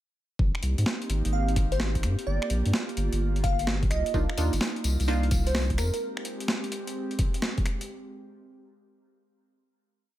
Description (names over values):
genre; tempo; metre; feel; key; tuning
UK garage, two-step garage; 128 BPM; 4/4; swing 66% on 16ths; F dorian; A4 = 440 Hz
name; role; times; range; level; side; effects
airy breathy pad; sustained chords; 0.7-7.9 s; Ab3 to G4; -35 LUFS; right 1 dB; chorus, sidechain pumping
saturated sub bass; bass; 0.4-5.9 s; G1 to Ab2; -26 LUFS; equal; none
electronic kick drum; drums; 0.4-7.6 s; none; -27 LUFS; equal; studio reverb
breakbeat sampler-style drum kit; drums; 0.5-7.9 s; finger snaps, hi-hat, snare drum; -32 LUFS; equal; studio reverb
glassy wavetable pluck; melody; 1.3-6.0 s; Bb4 to F5; -34 LUFS; right 1 dB; chorus, phaser, dub echo
punchy chord stab; stabs; 4.1-5.3 s; Bb3 to F4; -32 LUFS; right 1 dB; chorus, vintage 12-bit sampler grit, dub echo
tambourine; percussion; 4.1-6.0 s; none; -39 LUFS; left 3 dB; none
room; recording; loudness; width
little or no reverb; none; -25 LUFS; side -14 dB against mid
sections
0.4-7.9 groove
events
none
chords
0.4 Abmaj9; 2.0 Gm7; 3.9 Cm11; 5.8 Fmadd9 (rootless)